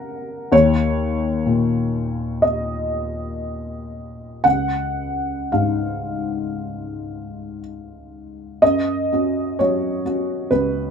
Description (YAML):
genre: neoclassical minimalist piano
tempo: 56-66 BPM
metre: 4/4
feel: rubato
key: F# major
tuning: A4 = 439 Hz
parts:
  - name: felt-muted upright piano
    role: solo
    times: 0.0-10.9 s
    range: C#2 to F#5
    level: -19 LUFS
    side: left 1 dB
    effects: none
room: light reverb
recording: minimal, uncompressed stereo recording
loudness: -18 LUFS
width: side -6 dB against mid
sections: 0.0-8.6 A section; 8.6-10.9 B section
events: none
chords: 0.0 F#; 0.5 D#5; 4.4 C#; 8.6 F#5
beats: | 0.52 1.46 2.42 3.40 | 4.44 5.50 6.54 7.59 | 8.61 9.58 10.51